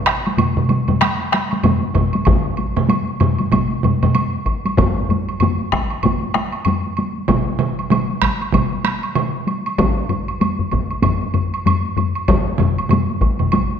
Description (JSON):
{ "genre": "japanese traditional, taiko drum ensemble", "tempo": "96 BPM", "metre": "4/4", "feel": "swing 60% on 16ths", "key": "none", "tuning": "none", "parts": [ { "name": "solo taiko drums", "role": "percussion", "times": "0.1-13.5 s", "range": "none", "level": "-20 LUFS", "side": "right 4 dB", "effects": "none" }, { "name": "taiko ensemble", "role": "percussion", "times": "0.1-13.5 s", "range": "none", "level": "-21 LUFS", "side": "left 5 dB", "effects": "none" }, { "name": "woodblock", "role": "percussion", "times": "0.1-13.7 s", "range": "none", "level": "-25 LUFS", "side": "right 4 dB", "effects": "none" }, { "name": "taiko ensemble", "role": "percussion", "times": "0.3-13.8 s", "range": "none", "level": "-21 LUFS", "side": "equal", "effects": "none" }, { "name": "taiko ensemble", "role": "percussion", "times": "1.9-13.7 s", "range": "none", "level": "-21 LUFS", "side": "left 1 dB", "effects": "none" } ], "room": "wet recital hall reverb, RT60 1.5 s", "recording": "none", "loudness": "-16 LUFS", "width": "side -8 dB against mid", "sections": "0.0-4.8 A section; 4.8-13.8 B section", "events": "none", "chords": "none", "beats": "0.38 1.01 1.64 | 2.27 2.90 3.52 4.15 | 4.78 5.41 6.03 6.66 | 7.29 7.91 8.54 9.16 | 9.79 10.41 11.04 11.66 | 12.29 12.91 13.53" }